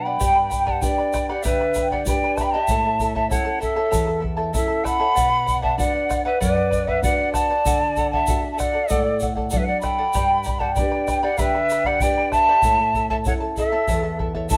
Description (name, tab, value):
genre	andean folk, Andean ensemble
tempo	96 BPM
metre	4/4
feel	straight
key	unclear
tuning	A4 = 440 Hz
part	quena	melody	0.0-14.6 s	D5 to B5	-25 LUFS	equal	none
part	reedy pan flute	second line	0.0-14.6 s	A4 to G5	-27 LUFS	equal	none
part	charango	accompaniment	0.0-14.6 s	E4 to B5	-28 LUFS	equal	none
part	nylon-string guitar	accompaniment	0.0-14.6 s	E2 to B4	-31 LUFS	equal	none
part	bombo	percussion	0.2-14.6 s	none	-29 LUFS	equal	none
part	egg shaker	percussion	0.2-14.6 s	none	-38 LUFS	equal	none
room	wet stone room reverb, RT60 1.1 s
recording	band playing live in one room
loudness	-21 LUFS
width	mono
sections	0.2-14.6 A section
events	break 0.0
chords	0.2 G; 2.7 A; 5.2 Bm; 7.6 D; 10.1 G; 12.6 A